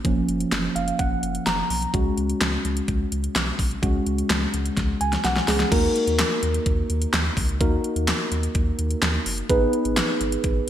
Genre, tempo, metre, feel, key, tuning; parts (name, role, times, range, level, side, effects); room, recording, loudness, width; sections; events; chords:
synth-pop; 127 BPM; 4/4; straight; Eb minor; A4 = 440 Hz
mellow tine electric piano; accompaniment; 0.0-10.7 s; F3 to Bb5; -24 LUFS; right 1 dB; lush chorus
warm sub bass; bass; 0.0-10.6 s; F1 to Eb2; -27 LUFS; equal
pop drum kit; drums; 0.0-10.6 s; crash cymbal, handclaps, hi-hat, kick drum, snare drum; -24 LUFS; equal; gated reverb
moderate lush hall reverb, RT60 1.9 s; bright 1980s-style digital production; -20 LUFS; side -11 dB against mid
0.0-5.7 A section; 5.7-10.7 B section
tine electric piano fill 0.5-1.9, 4.8-5.7; drum fill 4.8-5.7
0.0 Gb; 1.9 Dbsus4; 5.7 Ebm; 9.5 Abm